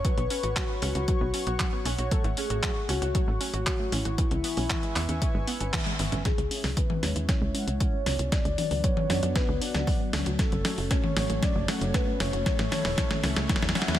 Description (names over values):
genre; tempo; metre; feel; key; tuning
italo disco; 116 BPM; 4/4; straight; F# minor; A4 = 440 Hz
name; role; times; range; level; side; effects
soft octave-layered synth lead; melody; 0.0-14.0 s; E4 to D5; -33 LUFS; left 1 dB; chorus, phaser, digital delay
warm analog pad; sustained chords; 0.0-14.0 s; E3 to C#6; -36 LUFS; left 1 dB; chorus
wide unison pluck; arpeggios; 0.0-14.0 s; E3 to F#4; -38 LUFS; right 2 dB; digital delay
tight sequencer bass; bass; 0.0-14.0 s; E1 to F#2; -30 LUFS; equal; tube saturation
clean 12-bit digital drum machine; drums; 0.0-14.0 s; handclaps, hi-hat, snare drum, toms; -30 LUFS; left 1 dB; none
electronic kick drum; drums; 0.0-13.6 s; none; -28 LUFS; equal; none
analog synth brass; stabs; 6.5-14.0 s; G#3 to F#5; -37 LUFS; left 2 dB; chorus, cassette tape
room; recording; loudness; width
light reverb, digital ambience; none; -24 LUFS; side -12 dB against mid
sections
0.0-6.3 A section; 6.3-14.0 B section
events
drum fill 5.7-6.3, 6.3-14.0; band accent 5.7; filter sweep on analog polysynth 6.3-14.0; filter sweep on analog synth pad 6.3-14.0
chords
0.0 Bsus2; 2.1 F#m/A; 4.2 C#m7; 6.3 C#m; 8.3 Bm/D; 10.4 F#m; 12.5 A